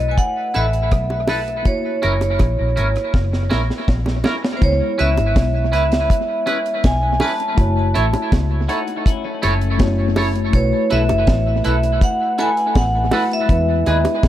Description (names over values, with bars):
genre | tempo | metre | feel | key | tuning
lovers rock reggae | 81 BPM | 4/4 | straight | C# minor | A4 = 439 Hz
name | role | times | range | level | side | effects
vibraphone with hard mallets | melody | 0.0-14.3 s | B#4 to A5 | -21 LUFS | right 1 dB | tape echo
mellow tine electric piano | accompaniment | 0.0-14.3 s | G#3 to C#5 | -25 LUFS | left 2 dB | medium stereo tremolo, tape echo
vintage muted fingered electric bass | bass | 0.0-14.3 s | F#1 to E2 | -19 LUFS | equal | none
deep reggae drum kit | drums | 0.2-14.3 s | hi-hat, kick drum, rim click, snare drum | -19 LUFS | equal | tape echo
twangy electric guitar | stabs | 0.5-14.0 s | C#4 to C#5 | -24 LUFS | right 2 dB | analog chorus, tape echo
bongos | percussion | 0.5-14.2 s | none | -26 LUFS | right 2 dB | none
twelve-string electric guitar | arpeggios | 8.7-10.3 s | A3 to F#4 | -27 LUFS | left 8 dB | spring reverb, tape echo
room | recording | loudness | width
light reverb, small room ambience | none | -15 LUFS | side -12 dB against mid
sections
0.0-4.6 A section; 4.6-14.3 B section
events
drum fill 3.1-4.6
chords
0.0 B7sus4; 1.7 F#7; 4.6 C#m7; 7.6 F#m7; 10.5 B7sus4; 13.5 Emaj7